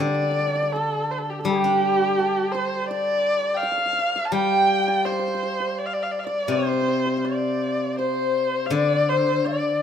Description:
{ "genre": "chinese traditional, Chinese chamber ensemble", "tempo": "83 BPM", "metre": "4/4", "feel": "straight", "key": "D yu mode", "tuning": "A4 = 440 Hz", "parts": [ { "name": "dark erhu", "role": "melody", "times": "0.0-9.8 s", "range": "G4 to A5", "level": "-24 LUFS", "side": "left 1 dB", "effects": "none" }, { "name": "hammered dulcimer", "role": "second line", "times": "0.0-9.8 s", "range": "G4 to G5", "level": "-28 LUFS", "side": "right 7 dB", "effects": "none" }, { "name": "steel-string zither", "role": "accompaniment", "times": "0.0-9.8 s", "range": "C3 to D4", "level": "-25 LUFS", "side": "left 3 dB", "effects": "none" }, { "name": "mellow xiao", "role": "second line", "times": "8.0-9.8 s", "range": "C5 to F5", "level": "-24 LUFS", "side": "left 9 dB", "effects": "none" } ], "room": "moderate recital hall reverb, RT60 1.5 s", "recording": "close, detailed microphones", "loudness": "-20 LUFS", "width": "side -8 dB against mid", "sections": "0.0-8.7 A section; 8.7-9.8 B section", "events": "none", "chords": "none", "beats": "| 0.02 0.75 1.47 2.19 | 2.90 3.62 4.34 5.06 | 5.79 6.51 7.25 7.99 | 8.73 9.46" }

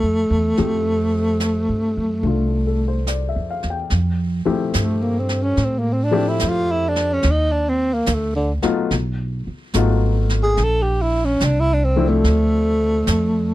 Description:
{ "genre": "jazz ballad", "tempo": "72 BPM", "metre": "4/4", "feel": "swing 66% on 8ths", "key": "F major", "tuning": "A4 = 440 Hz", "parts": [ { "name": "breathy tenor saxophone", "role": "melody", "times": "0.0-13.5 s", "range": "D3 to A4", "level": "-19 LUFS", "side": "equal", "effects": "none" }, { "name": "warm baby grand piano", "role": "accompaniment", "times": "0.0-13.5 s", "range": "F3 to G5", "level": "-24 LUFS", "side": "left 5 dB", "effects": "none" }, { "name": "upright bass", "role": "bass", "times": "0.0-13.5 s", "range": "Ab1 to A2", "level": "-20 LUFS", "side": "right 1 dB", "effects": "none" }, { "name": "jazz brush drum kit", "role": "drums", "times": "0.6-13.5 s", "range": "brushed snare drum, hi-hat, snare drum", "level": "-28 LUFS", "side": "right 2 dB", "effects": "none" } ], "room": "little or no reverb", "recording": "dry, close 1970s-style studio recording", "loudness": "-17 LUFS", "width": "side -15 dB against mid", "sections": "0.0-3.9 A section; 3.9-13.5 B section", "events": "tenor saxophone solo 3.9-13.5", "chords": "0.0 Fmaj9; 7.2 D6b9; 8.9 B7#11; 10.6 Bbmaj9#11", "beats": "| 0.57 1.40 2.24 3.08 | 3.91 4.75 5.58 6.41 | 7.25 8.08 8.91 9.74 | 10.57 11.40 12.23 13.06" }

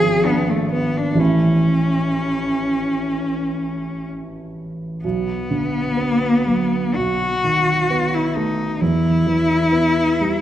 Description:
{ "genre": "classical, romantic duo for cello and grand piano", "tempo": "59-68 BPM", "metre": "4/4", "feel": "rubato", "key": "unclear", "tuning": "A4 = 440 Hz", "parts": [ { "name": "clear cello", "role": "melody", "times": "0.0-10.4 s", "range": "A3 to G#4", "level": "-20 LUFS", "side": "left 2 dB", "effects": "none" }, { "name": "dark baby grand piano", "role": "accompaniment", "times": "0.0-10.4 s", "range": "G#1 to E4", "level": "-20 LUFS", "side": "right 2 dB", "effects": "none" } ], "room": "wet concert hall reverb, RT60 1.9 s", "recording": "none", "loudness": "-17 LUFS", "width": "side -11 dB against mid", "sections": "0.0-10.4 A section", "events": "none", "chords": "0.0 G#dim7; 1.2 A; 5.0 Bm; 7.0 B7; 8.8 Em", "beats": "0.26 | 1.20 2.14 3.09 4.07 | 5.04 5.96 6.95 7.89 | 8.81 9.72" }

